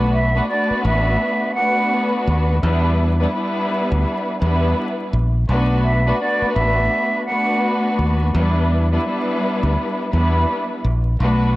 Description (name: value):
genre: hip hop, boom-bap hip-hop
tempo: 84 BPM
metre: 4/4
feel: swing 60% on 16ths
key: unclear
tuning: A4 = 440 Hz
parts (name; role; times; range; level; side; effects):
- rich studio string section; accompaniment; 0.0-11.6 s; G3 to B4; -20 LUFS; left 1 dB; cassette tape, high-pass filter, low-pass filter
- fingered electric bass; bass; 0.0-11.6 s; A1 to E2; -17 LUFS; equal; none
- bright silver concert flute; melody; 0.1-7.8 s; D5 to F#5; -21 LUFS; right 2 dB; high-pass filter, low-pass filter, tape echo
room: light reverb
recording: vinyl crackle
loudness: -16 LUFS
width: side -18 dB against mid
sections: 0.0-11.6 A section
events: none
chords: 0.0 Bm7; 2.6 Em7; 5.5 Bm7; 8.3 Em7